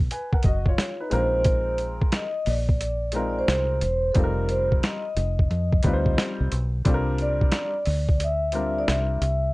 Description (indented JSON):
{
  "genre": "hip hop, jazz-hop",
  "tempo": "89 BPM",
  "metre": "4/4",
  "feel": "swing 65% on 16ths",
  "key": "unclear",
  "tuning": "A4 = 440 Hz",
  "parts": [
    { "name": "deep dub fingered electric bass", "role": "bass", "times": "0.0-9.5 s", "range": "E1 to F2", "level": "-26 LUFS", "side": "equal", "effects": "none" },
    { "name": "warm baby grand piano", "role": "accompaniment", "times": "0.1-9.2 s", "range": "G3 to Ab5", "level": "-29 LUFS", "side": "left 2 dB", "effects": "none" },
    { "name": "boom bap sampler-style drum kit", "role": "drums", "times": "0.1-9.4 s", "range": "hi-hat, kick drum, snare drum", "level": "-23 LUFS", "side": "equal", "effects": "none" },
    { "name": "vibraphone with soft mallets", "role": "melody", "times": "1.1-9.5 s", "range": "A4 to E5", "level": "-27 LUFS", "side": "equal", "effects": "slapback echo" }
  ],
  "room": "moderate studio ambience, RT60 0.5 s",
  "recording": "worn, warbling old tape, cassette tape, warbly pitch drift",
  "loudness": "-21 LUFS",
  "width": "side -22 dB against mid",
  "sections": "0.0-9.5 A section",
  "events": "none",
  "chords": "0.0 Db9sus4; 1.1 Bb9sus4; 4.2 F9sus4; 6.9 C9sus4"
}